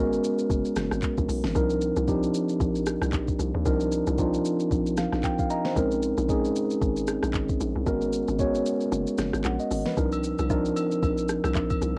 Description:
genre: amapiano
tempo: 114 BPM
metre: 4/4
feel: swing 58% on 16ths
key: C phrygian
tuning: A4 = 440 Hz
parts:
  - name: mellow tine electric piano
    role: accompaniment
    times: 0.0-12.0 s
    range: F3 to Bb5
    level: -25 LUFS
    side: equal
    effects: cassette tape, plate reverb
  - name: hollow log drum bass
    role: bass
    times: 0.0-12.0 s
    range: Gb1 to Eb2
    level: -30 LUFS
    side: equal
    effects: none
  - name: smooth R&B drum kit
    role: drums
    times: 0.1-12.0 s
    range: handclaps, hi-hat, kick drum, rim click, shaker, snare drum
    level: -30 LUFS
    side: equal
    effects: none
  - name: agogo bells and woodblock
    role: percussion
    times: 10.1-11.8 s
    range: none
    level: -38 LUFS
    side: left 2 dB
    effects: none
room: moderate booth ambience, RT60 0.2 s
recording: home recording on cassette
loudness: -23 LUFS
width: side -31 dB against mid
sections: 0.0-12.0 A section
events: tine electric piano fill 4.7-5.8; kick muted 8.9-10.0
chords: 0.0 Abm11; 1.6 Cm11; 5.8 Bbm11; 7.9 Abm11; 10.0 Cm11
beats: 0.50 1.02 | 1.55 2.08 2.60 3.13 | 3.66 4.18 4.71 5.24 | 5.76 6.29 6.81 7.34 | 7.87 8.39 8.92 9.45 | 9.97 10.50 11.02 11.55

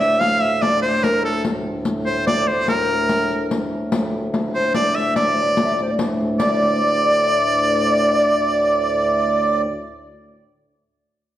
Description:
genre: medieval dance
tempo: 146 BPM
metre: 3/4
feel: straight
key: unclear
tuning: A4 = 440 Hz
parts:
  - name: edgy shawm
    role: melody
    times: 0.0-9.6 s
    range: A4 to F5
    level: -21 LUFS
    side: right 1 dB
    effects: none
  - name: mellow hollow tenor recorder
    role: second line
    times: 0.0-9.6 s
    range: A4 to F5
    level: -23 LUFS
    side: left 4 dB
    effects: none
  - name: melodica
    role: second line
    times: 0.0-9.6 s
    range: A4 to F5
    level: -24 LUFS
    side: right 5 dB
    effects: none
  - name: hand-pumped harmonium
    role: drone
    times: 0.0-9.7 s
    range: D2 to A2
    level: -24 LUFS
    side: equal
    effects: none
  - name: riq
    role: percussion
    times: 0.2-6.6 s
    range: none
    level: -24 LUFS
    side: left 2 dB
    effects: none
room: wet recital hall reverb, RT60 1.5 s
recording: worn, warbling old tape, cassette tape, warbly pitch drift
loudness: -16 LUFS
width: side -12 dB against mid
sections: 0.0-6.4 A section; 6.4-8.9 B section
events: none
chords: none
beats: | 0.20 0.62 1.03 | 1.45 1.86 2.27 | 2.69 3.10 3.51 | 3.92 4.34 4.75 | 5.16 5.57 5.98 | 6.40 6.81 7.22 | 7.63 8.04 8.45

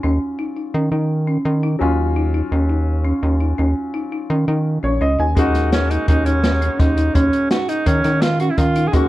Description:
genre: progressive instrumental, band music in an uneven meter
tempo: 168 BPM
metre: 5/4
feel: straight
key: Eb minor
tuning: A4 = 440 Hz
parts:
  - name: warm grand piano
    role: accompaniment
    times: 0.0-9.1 s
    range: Gb3 to Ab5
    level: -26 LUFS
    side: left 3 dB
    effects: none
  - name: folk marimba with soft mallets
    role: arpeggios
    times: 0.0-9.1 s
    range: Db4 to Eb4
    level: -22 LUFS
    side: equal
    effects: none
  - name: rubbery square bass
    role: bass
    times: 0.0-9.1 s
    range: Bb1 to Eb3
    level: -19 LUFS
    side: equal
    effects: none
  - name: clear alto saxophone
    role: second line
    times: 5.4-9.1 s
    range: Db4 to Ab4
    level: -20 LUFS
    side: right 2 dB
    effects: none
  - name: open jazz drum kit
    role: drums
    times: 5.4-9.0 s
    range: hi-hat, kick drum, snare drum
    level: -19 LUFS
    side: equal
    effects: none
room: light reverb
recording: worn, warbling old tape, cassette tape, warbly pitch drift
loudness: -16 LUFS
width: side -16 dB against mid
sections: 0.0-9.1 A section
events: grand piano fill 4.7-5.4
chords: 0.0 Ebm7; 5.4 Gbadd9/Eb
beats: | 0.03 0.39 0.74 1.10 1.46 | 1.81 2.17 2.52 2.88 3.23 | 3.59 3.95 4.30 4.66 5.01 | 5.37 5.73 6.08 6.44 6.80 | 7.15 7.51 7.87 8.22 8.58 | 8.94

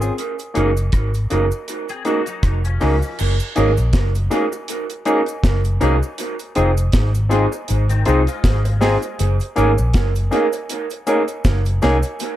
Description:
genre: lovers rock reggae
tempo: 80 BPM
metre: 4/4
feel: swing 56% on 16ths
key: unclear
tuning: A4 = 440 Hz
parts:
  - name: barky tine electric piano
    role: accompaniment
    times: 0.0-12.0 s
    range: Bb3 to Ab4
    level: -23 LUFS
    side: left 4 dB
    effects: overdrive, lush chorus
  - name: vintage muted fingered electric bass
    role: bass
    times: 0.0-12.0 s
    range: F1 to Db2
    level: -18 LUFS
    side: equal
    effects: none
  - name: cabasa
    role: percussion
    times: 0.0-12.4 s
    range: none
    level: -39 LUFS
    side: right 6 dB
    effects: none
  - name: deep reggae drum kit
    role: drums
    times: 0.2-12.4 s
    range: crash cymbal, hi-hat, kick drum, rim click, snare drum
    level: -21 LUFS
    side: equal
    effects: dub echo
  - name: electric guitar through a small old amp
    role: stabs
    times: 0.6-12.0 s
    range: Eb4 to Db5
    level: -22 LUFS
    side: right 3 dB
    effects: dub echo
  - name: twangy electric guitar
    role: arpeggios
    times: 1.9-3.2, 7.9-9.2 s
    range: Eb3 to Ab4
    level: -31 LUFS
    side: left 7 dB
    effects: ensemble chorus
room: light reverb, studio ambience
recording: dark, warm production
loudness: -16 LUFS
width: side -13 dB against mid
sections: 0.0-3.2 A section; 3.2-12.4 B section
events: none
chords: 0.2 Gb6; 6.2 Fm7; 9.2 Gb6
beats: | 0.18 0.93 1.68 2.43 | 3.18 3.93 4.68 5.43 | 6.19 6.94 7.69 8.44 | 9.19 9.94 10.69 11.44 | 12.20

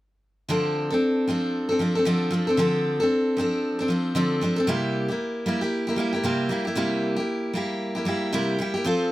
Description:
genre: pop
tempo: 115 BPM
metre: 4/4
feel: swing 60% on 16ths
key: D minor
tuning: A4 = 441 Hz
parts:
  - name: picked steel-string acoustic guitar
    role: accompaniment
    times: 0.5-9.1 s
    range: C3 to A4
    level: -22 LUFS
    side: equal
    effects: none
room: light reverb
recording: close, detailed microphones, faint mains hum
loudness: -22 LUFS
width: side -16 dB against mid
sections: 0.5-9.1 A section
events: none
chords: 0.5 Dm7; 4.7 C7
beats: | 0.50 1.02 1.54 2.06 | 2.59 3.11 3.63 4.16 | 4.68 5.20 5.72 6.25 | 6.77 7.29 7.81 8.34 | 8.86

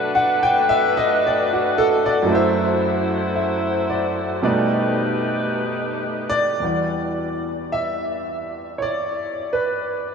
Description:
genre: jazz ballad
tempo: 55 BPM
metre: 4/4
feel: swing 67% on 8ths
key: E minor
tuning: A4 = 440 Hz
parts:
  - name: clear grand piano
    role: accompaniment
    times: 0.0-10.1 s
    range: E2 to G5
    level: -20 LUFS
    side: right 1 dB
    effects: lush chorus
  - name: bright saxophone section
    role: sustained chords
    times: 0.0-6.6 s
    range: A3 to C5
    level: -24 LUFS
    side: left 2 dB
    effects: none
room: wet huge ambient reverb, RT60 4.3 s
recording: dreamy mix soaked in reverb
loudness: -18 LUFS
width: side -6 dB against mid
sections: 0.0-6.6 A section; 6.6-10.1 B section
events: none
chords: 0.0 Bm7; 2.3 F#m7b5; 4.4 B7alt; 6.6 Em9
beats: 0.12 1.20 | 2.27 3.35 4.43 5.53 | 6.62 7.71 8.79 9.88

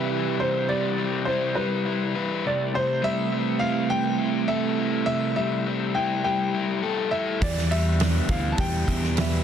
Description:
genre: indie rock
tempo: 103 BPM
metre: 4/4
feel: straight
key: A minor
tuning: A4 = 439 Hz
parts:
  - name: warm upright piano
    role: melody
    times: 0.0-9.4 s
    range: B4 to A5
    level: -28 LUFS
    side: equal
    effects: tape echo
  - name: electric guitar through a small old amp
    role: riff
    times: 0.0-9.4 s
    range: E2 to G4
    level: -29 LUFS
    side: right 6 dB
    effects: wide subtle chorus, tape echo
  - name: raw garage guitar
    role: riff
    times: 0.0-9.4 s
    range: C3 to B4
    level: -27 LUFS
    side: left 5 dB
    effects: overdrive, spring reverb
  - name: fingered electric bass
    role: bass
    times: 7.4-9.4 s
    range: D2 to E2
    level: -25 LUFS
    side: equal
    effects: none
  - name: loose indie drum kit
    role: drums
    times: 7.4-9.3 s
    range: hi-hat, kick drum, snare drum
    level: -26 LUFS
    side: right 1 dB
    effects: none
room: light reverb, small room ambience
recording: dense, heavily limited modern master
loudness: -22 LUFS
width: side -8 dB against mid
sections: 0.0-9.4 A section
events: none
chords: 0.0 Cmaj7; 2.4 Am7/C; 7.4 Em7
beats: | 0.40 0.98 1.57 2.15 | 2.74 3.32 3.91 4.49 | 5.08 5.66 6.25 6.83 | 7.42 8.00 8.59 9.17

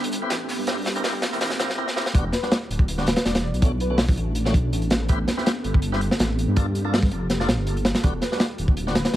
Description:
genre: drum and bass, jungle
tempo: 163 BPM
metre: 4/4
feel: swing 54% on 16ths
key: E minor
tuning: A4 = 442 Hz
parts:
  - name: ethereal airy pad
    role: sustained chords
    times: 0.0-9.2 s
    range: G3 to A4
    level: -32 LUFS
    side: right 2 dB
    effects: ensemble chorus, built-in reverb
  - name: tonewheel organ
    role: stabs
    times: 0.0-9.0 s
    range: D3 to B4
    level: -30 LUFS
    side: equal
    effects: overdrive, fast rotary speaker, dub echo
  - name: dark detuned saw bass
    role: bass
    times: 0.0-9.2 s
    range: D1 to G2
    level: -26 LUFS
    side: equal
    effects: high-pass filter
  - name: crunchy breakbeat drum kit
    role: drums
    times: 0.0-9.2 s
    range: hi-hat, kick drum, snare drum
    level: -22 LUFS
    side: equal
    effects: high-pass filter on kick, high-pass filter on hats, high-pass filter on snare, high-pass filter on room
  - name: crunchy breakbeat drum kit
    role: drums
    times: 0.1-1.7 s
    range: hi-hat, snare drum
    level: -36 LUFS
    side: equal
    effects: high-pass filter on hats, high-pass filter on snare, high-pass filter on room
  - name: airy dreamy lead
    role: melody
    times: 2.3-4.0, 8.2-9.1 s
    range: B4 to D5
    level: -33 LUFS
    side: left 1 dB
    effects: chorus, vintage 12-bit sampler grit, dub echo
room: studio reverb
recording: vinyl crackle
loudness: -20 LUFS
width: side -13 dB against mid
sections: 0.0-2.1 A section; 2.1-9.2 B section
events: build-up 0.0-2.1; drum fill 0.0-1.8, 1.9; filter sweep on tonewheel organ 0.0-2.1; drop 2.1-9.2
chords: 0.0 Am9; 0.7 Gm9; 2.1 Em9; 3.6 Bm9; 5.1 Am9; 6.6 Gm9; 8.0 Em9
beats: 0.31 | 0.67 1.04 1.41 1.78 | 2.15 2.51 2.88 3.25 | 3.62 3.99 4.36 4.72 | 5.09 5.46 5.83 6.20 | 6.56 6.93 7.30 7.67 | 8.04 8.40 8.77 9.14

